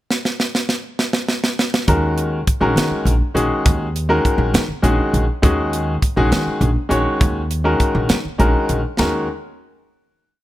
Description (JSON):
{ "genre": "electric jazz fusion", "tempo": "68 BPM (dotted quarters)", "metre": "6/8", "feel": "straight", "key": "Eb minor", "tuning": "A4 = 440 Hz", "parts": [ { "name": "tight funk drum kit", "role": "drums", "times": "0.1-9.1 s", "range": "hi-hat, kick drum, ride cymbal, snare drum", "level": "-19 LUFS", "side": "right 1 dB", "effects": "none" }, { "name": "bright concert grand piano", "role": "accompaniment", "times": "1.9-9.3 s", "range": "Eb3 to Db5", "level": "-19 LUFS", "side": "left 1 dB", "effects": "none" }, { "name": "upright bass", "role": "bass", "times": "1.9-9.3 s", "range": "Bb1 to Eb3", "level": "-19 LUFS", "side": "equal", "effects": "none" } ], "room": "light reverb, studio reverb", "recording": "none", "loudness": "-16 LUFS", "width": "side -15 dB against mid", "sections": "0.1-1.9 pickup bar; 1.9-9.0 groove; 9.0-10.4 final chord", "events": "drum fill 0.1-1.9", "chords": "0.1 N.C.; 1.9 Ebm7" }